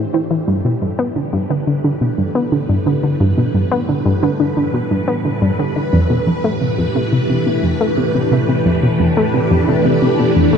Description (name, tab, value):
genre	ambient, sequencer-driven space music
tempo	88 BPM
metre	4/4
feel	straight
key	unclear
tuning	A4 = 437 Hz
part	phased string machine	sustained chords	0.0-10.6 s	A2 to C5	-18 LUFS	equal	ensemble chorus, phaser
part	analog pluck	riff	0.0-10.6 s	F2 to B3	-15 LUFS	equal	chorus, ping-pong delay
room	wet huge ambient reverb, RT60 7.5 s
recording	dark, warm production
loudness	-14 LUFS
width	side -7 dB against mid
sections	0.0-10.6 A section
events	fade-in on string machine 0.0-10.6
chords	0.5 G; 5.9 F